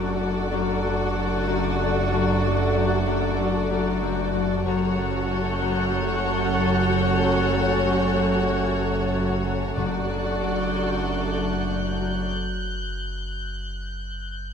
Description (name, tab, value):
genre	cinematic, suspense film score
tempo	94 BPM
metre	4/4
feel	straight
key	unclear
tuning	A4 = 440 Hz
part	warm studio violin section	melody	0.0-12.3 s	C#5 to D5	-32 LUFS	left 2 dB	none
part	warm studio violin section	second line	0.0-12.3 s	A4	-31 LUFS	equal	none
part	rich studio viola section	accompaniment	0.0-12.3 s	F#4	-29 LUFS	right 1 dB	none
part	mellow French horn section	sustained chords	0.0-12.3 s	A3 to D4	-30 LUFS	left 3 dB	none
part	Celtic harp	riff	0.0-14.5 s	F#2 to F#3	-29 LUFS	left 7 dB	none
part	dark studio double bass section	bass	0.0-12.3 s	F#1	-31 LUFS	right 6 dB	none
part	warm studio cello section	bass	0.0-12.3 s	F#2	-29 LUFS	right 4 dB	none
part	pure sine sub bass	drone	0.0-14.5 s	F#1	-34 LUFS	equal	none
part	warm symphonic violin section	texture	4.7-14.5 s	F#6 to C#7	-34 LUFS	left 2 dB	none
part	timpani	percussion	9.8-10.7 s	F#2	-34 LUFS	right 2 dB	none
room	moderate scoring stage reverb, RT60 1.7 s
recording	none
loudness	-21 LUFS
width	side -7 dB against mid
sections	0.0-14.5 A section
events	break 12.3-14.5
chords	0.0 D/F#; 4.7 F#m; 9.8 D/F#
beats	0.20 0.83 1.47 | 2.11 2.75 3.39 4.03 | 4.66 5.30 5.94 6.58 | 7.22 7.86 8.49 9.13 | 9.77 10.41 11.05 11.68 | 12.32 12.96 13.60 14.24